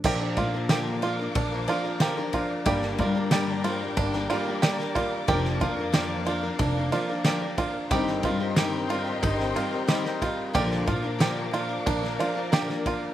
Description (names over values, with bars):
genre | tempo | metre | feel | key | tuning
indie folk with a building arrangement | 91 BPM | 4/4 | straight | Bb major | A4 = 441 Hz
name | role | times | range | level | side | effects
bright upright piano | accompaniment | 0.0-13.1 s | F1 to F5 | -31 LUFS | right 3 dB | slapback echo
fingerpicked steel-string acoustic guitar | accompaniment | 0.0-2.7 s | none | barely audible | none | none
picked steel-string acoustic guitar | accompaniment | 0.0-13.1 s | G2 to Bb4 | -31 LUFS | left 5 dB | none
upright bass | bass | 0.0-12.2 s | F1 to Bb2 | -31 LUFS | left 1 dB | none
loose indie drum kit | drums | 0.0-13.0 s | crash cymbal, kick drum, ride cymbal, snare drum | -29 LUFS | equal | none
warm studio string section | sustained chords | 0.1-13.1 s | Bb4 to D6 | -35 LUFS | left 4 dB | none
bluegrass banjo | arpeggios | 0.1-13.1 s | D4 to G4 | -31 LUFS | right 5 dB | none
room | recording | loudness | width
little or no reverb | none | -24 LUFS | side -12 dB against mid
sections
0.0-13.1 A section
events
none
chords
0.0 Bb; 2.7 Gm; 5.3 Bb/F; 7.9 Eb6/G; 10.5 Bb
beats
| 0.05 0.70 1.36 2.02 | 2.67 3.33 3.98 4.63 | 5.29 5.95 6.60 7.26 | 7.91 8.57 9.23 9.89 | 10.55 11.21 11.87 12.53